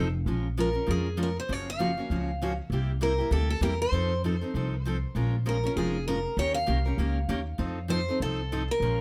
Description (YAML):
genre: acoustic string swing (jazz manouche)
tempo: 197 BPM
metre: 4/4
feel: swing 58% on 8ths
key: Bb minor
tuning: A4 = 441 Hz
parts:
  - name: picked steel-string acoustic guitar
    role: accompaniment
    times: 0.0-9.0 s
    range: C3 to Bb4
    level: -33 LUFS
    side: equal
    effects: none
  - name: upright bass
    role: bass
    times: 0.0-9.0 s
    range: F1 to F2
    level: -32 LUFS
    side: equal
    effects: none
  - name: picked steel-string acoustic guitar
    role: melody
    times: 0.6-9.0 s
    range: Ab4 to F5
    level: -33 LUFS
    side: equal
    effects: tape echo
room: light reverb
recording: none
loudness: -28 LUFS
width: mono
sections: 0.3-9.0 A section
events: none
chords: 0.3 Bbm7; 1.5 Gbmaj7; 2.7 C7; 3.9 F7; 5.1 Bbm7; 6.4 Eb7; 7.6 F7